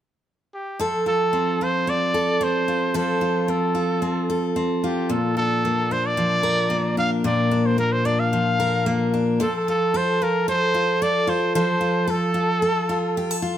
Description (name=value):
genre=pop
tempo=112 BPM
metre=4/4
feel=straight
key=F major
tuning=A4 = 441 Hz
part: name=bright trumpet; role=melody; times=0.5-13.4 s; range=G4 to F5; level=-23 LUFS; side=right 1 dB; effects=plate reverb
part: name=picked steel-string acoustic guitar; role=accompaniment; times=0.8-13.6 s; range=Bb2 to Bb4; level=-21 LUFS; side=equal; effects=none
room=moderate small room reverb, RT60 0.5 s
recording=none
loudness=-19 LUFS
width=side -10 dB against mid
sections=0.8-9.4 A section; 9.4-13.6 B section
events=none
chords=0.0 N.C.; 0.8 F; 5.1 Bb; 9.4 F